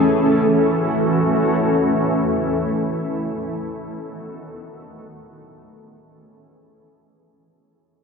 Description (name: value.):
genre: hip hop.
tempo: free time.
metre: none.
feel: none.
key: F# dorian.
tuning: A4 = 439 Hz.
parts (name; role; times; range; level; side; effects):
granular cloud pad; solo; 0.0-7.3 s; D#3 to A4; -18 LUFS; equal; built-in reverb.
room: moderate lush hall reverb, RT60 2.8 s.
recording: dark, warm production, low-pass filter.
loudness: -17 LUFS.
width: side -5 dB against mid.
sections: 0.0-7.3 A section.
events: fade-out 0.0-7.3; filter sweep 0.0-7.3.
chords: 0.0 F#m7; 3.4 B7; 5.3 Amaj7.